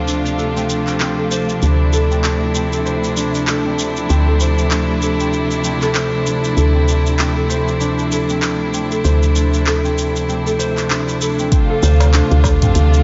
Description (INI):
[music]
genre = organic downtempo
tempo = 97 BPM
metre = 4/4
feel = swing 57% on 16ths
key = D minor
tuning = A4 = 439 Hz
[part]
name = rich chamber string section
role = sustained chords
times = 0.0-13.0 s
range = C3 to F4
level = -22 LUFS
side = equal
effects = sidechain pumping
[part]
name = concert harp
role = arpeggios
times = 0.0-13.0 s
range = C4 to C5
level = -23 LUFS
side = equal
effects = tape echo
[part]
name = woody FM bass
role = bass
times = 0.0-13.0 s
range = D2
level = -20 LUFS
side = equal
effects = sidechain pumping
[part]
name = deep house drum kit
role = drums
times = 0.1-13.0 s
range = handclaps, hi-hat, shaker, toms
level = -26 LUFS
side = equal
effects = low-pass filter on snare, low-pass filter on perc, low-pass filter on hats, low-pass filter on toms, low-pass filter on room
[part]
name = electronic kick drum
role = drums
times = 11.5-12.7 s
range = none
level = -18 LUFS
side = equal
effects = none
[part]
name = darbuka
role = percussion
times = 11.8-12.6 s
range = none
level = -29 LUFS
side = equal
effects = none
[sound]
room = light reverb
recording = nothing above 7.6 kHz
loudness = -16 LUFS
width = mono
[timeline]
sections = 0.0-11.5 A section; 11.5-13.0 B section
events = none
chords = 0.0 Dm7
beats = 0.38 1.00 | 1.62 2.24 2.86 3.48 | 4.09 4.71 5.33 5.95 | 6.57 7.19 7.80 8.42 | 9.04 9.66 10.28 10.90 | 11.52 12.13 12.75